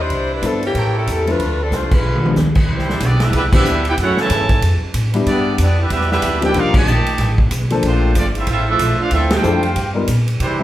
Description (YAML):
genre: jazz, big band swing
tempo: 187 BPM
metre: 4/4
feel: swing 61% on 8ths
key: C major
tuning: A4 = 440 Hz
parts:
  - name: clear saxophone section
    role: melody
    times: 0.0-2.4 s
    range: E3 to C5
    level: -20 LUFS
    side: left 2 dB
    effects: plate reverb
  - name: upright bass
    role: bass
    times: 0.0-10.6 s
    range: G1 to C3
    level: -19 LUFS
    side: equal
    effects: none
  - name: swinging big-band drum kit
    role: drums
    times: 0.1-10.5 s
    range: crash cymbal, hi-hat, kick drum, ride cymbal, snare drum, toms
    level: -20 LUFS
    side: equal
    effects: none
  - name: warm grand piano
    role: accompaniment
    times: 0.4-10.6 s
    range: E3 to A#4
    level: -20 LUFS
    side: left 3 dB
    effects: none
  - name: bright trumpet section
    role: stabs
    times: 0.7-1.2 s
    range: A4 to G5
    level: -27 LUFS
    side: right 3 dB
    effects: none
  - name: clear trombone section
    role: second line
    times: 1.9-10.6 s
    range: Bb2 to A4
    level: -23 LUFS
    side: right 3 dB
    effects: none
  - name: clear trumpet section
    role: melody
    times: 2.6-10.6 s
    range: G3 to A5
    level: -20 LUFS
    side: right 1 dB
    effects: none
room: moderate large studio reverb, RT60 0.8 s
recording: heard from further back in the room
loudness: -14 LUFS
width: side -14 dB against mid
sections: 0.0-2.7 A section; 2.7-10.6 B section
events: drum fill 1.7-2.4; band accent 1.9, 3.5, 6.7, 9.3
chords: 0.1 Cmaj9; 0.7 A7b9; 1.4 Dm7; 2.0 G7b9; 2.7 Cmaj9; 4.0 F#m9; 4.6 F69; 5.3 Em7; 6.5 Cm11; 7.2 F13; 7.8 Bbmaj9; 9.1 Dm9; 9.8 G7alt